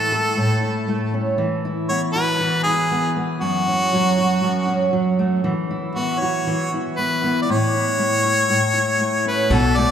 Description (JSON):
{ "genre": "acoustic pop", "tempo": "118 BPM", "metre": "4/4", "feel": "swing 55% on 16ths", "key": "unclear", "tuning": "A4 = 439 Hz", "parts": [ { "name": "bright harmonica", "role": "melody", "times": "0.0-9.9 s", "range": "F#4 to D5", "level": "-21 LUFS", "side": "left 1 dB", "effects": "none" }, { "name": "fingerpicked steel-string acoustic guitar", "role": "accompaniment", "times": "0.0-9.9 s", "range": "F#2 to A4", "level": "-20 LUFS", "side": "right 1 dB", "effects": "none" }, { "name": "upright bass", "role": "bass", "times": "9.5-9.9 s", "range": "B1", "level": "-20 LUFS", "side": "equal", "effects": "none" }, { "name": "vintage brush drum kit", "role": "drums", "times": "9.5-9.9 s", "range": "crash cymbal, kick drum, tambourine", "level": "-24 LUFS", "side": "left 1 dB", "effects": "none" } ], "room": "wet church reverb, RT60 3.8 s", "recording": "recorded in a church or concert hall", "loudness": "-17 LUFS", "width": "side -8 dB against mid", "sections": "0.0-9.5 A section", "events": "none", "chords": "0.0 A; 1.4 Esus2; 3.4 F#m; 5.5 Esus2; 7.5 A" }